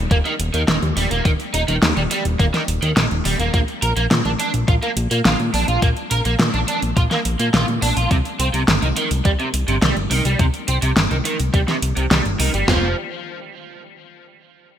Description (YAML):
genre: synthwave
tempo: 105 BPM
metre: 4/4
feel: straight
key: unclear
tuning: A4 = 441 Hz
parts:
  - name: fat analog bass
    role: bass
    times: 0.0-12.9 s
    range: Eb1 to Bb2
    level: -20 LUFS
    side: equal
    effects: none
  - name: overdriven electric guitar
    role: riff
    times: 0.1-12.9 s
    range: C3 to Bb4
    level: -22 LUFS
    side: right 2 dB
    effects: ensemble chorus, low-pass filter, ping-pong delay
  - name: gated 80s digital drum machine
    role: drums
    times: 0.1-12.8 s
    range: kick drum, snare drum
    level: -18 LUFS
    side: equal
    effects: gated reverb, gated reverb snare, small room ambience
  - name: pop drum kit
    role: drums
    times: 0.1-12.7 s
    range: hi-hat, snare drum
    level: -21 LUFS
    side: equal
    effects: small room ambience, gated reverb
room: moderate plate reverb, RT60 3.2 s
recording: bright 1980s-style digital production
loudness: -16 LUFS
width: side -10 dB against mid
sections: 0.0-12.7 A section; 12.7-14.8 B section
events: filter sweep on analog synth bass 0.0-12.7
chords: 0.0 Eb5; 3.5 N.C.; 8.1 C5; 12.7 N.C.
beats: 0.11 0.68 | 1.25 1.82 2.40 2.97 | 3.54 4.11 4.68 5.25 | 5.82 6.40 6.97 7.54 | 8.11 8.68 9.25 9.82 | 10.40 10.97 11.54 12.11 | 12.68